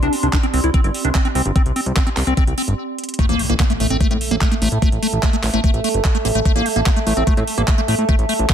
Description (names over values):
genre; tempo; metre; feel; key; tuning
psychedelic trance; 147 BPM; 4/4; straight; A phrygian; A4 = 440 Hz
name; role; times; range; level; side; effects
liquid acid bass; riff; 0.0-8.5 s; A3 to E4; -22 LUFS; moving between left 3 dB and right 3 dB; phaser, auto-pan, sidechain pumping, tape echo
fat analog bass; bass; 0.0-8.5 s; G1 to A2; -20 LUFS; equal; none
garage drum kit; drums; 0.0-8.5 s; handclaps, hi-hat; -25 LUFS; right 1 dB; none
warbly tape-like pad; texture; 0.0-8.5 s; C4 to C6; -25 LUFS; right 4 dB; chorus, built-in reverb, sidechain pumping
electronic kick drum; drums; 0.3-8.5 s; none; -16 LUFS; equal; none
impact; sound effects; 3.2-4.8 s; none; -28 LUFS; equal; none
room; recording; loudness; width
light reverb; dense, heavily limited modern master; -15 LUFS; side -9 dB against mid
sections
0.0-3.2 A section; 3.2-8.5 B section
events
filter sweep on acid bass 0.0-3.2; stop 2.8-3.2; drum fill 3.0; drop 3.2-8.5; impact 3.2-4.8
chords
0.0 C5; 3.2 A5